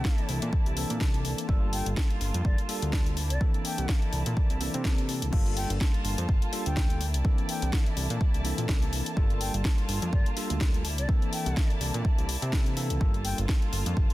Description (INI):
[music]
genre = filtered disco house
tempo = 125 BPM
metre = 4/4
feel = swing 56% on 16ths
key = G dorian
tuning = A4 = 440 Hz
[part]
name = mellow silver concert flute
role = melody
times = 0.0-13.4 s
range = D5 to G5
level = -41 LUFS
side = left 1 dB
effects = sidechain pumping, low-pass filter, dub echo
[part]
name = bell-like tine electric piano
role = accompaniment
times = 0.0-14.1 s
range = E3 to A4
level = -35 LUFS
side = equal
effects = fast stereo tremolo, phaser, sidechain pumping, low-pass filter
[part]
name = muted symphonic violin section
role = sustained chords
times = 0.0-14.1 s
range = Bb3 to A5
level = -39 LUFS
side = right 1 dB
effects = sidechain pumping, low-pass filter
[part]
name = fat analog bass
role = bass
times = 0.0-14.1 s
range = G1 to C3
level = -30 LUFS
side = equal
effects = tube saturation, sidechain pumping, low-pass filter
[part]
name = electronic kick drum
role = drums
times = 0.0-14.1 s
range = none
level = -25 LUFS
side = equal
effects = overdrive, studio reverb
[part]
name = house drum kit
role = drums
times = 0.0-14.1 s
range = crash cymbal, hi-hat, snare drum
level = -35 LUFS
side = left 2 dB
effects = overdrive, sidechain pumping on hats, studio reverb, sidechain pumping on cymbals
[sound]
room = little or no reverb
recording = dense, heavily limited modern master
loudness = -25 LUFS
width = side -17 dB against mid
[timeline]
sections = 0.0-5.3 A section; 5.3-14.1 B section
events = drop 5.3-14.1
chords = 0.0 C13; 1.5 Gm9; 3.2 C13; 5.3 Gm9; 7.0 C13; 9.2 Gm9; 10.8 C13; 13.0 Gm9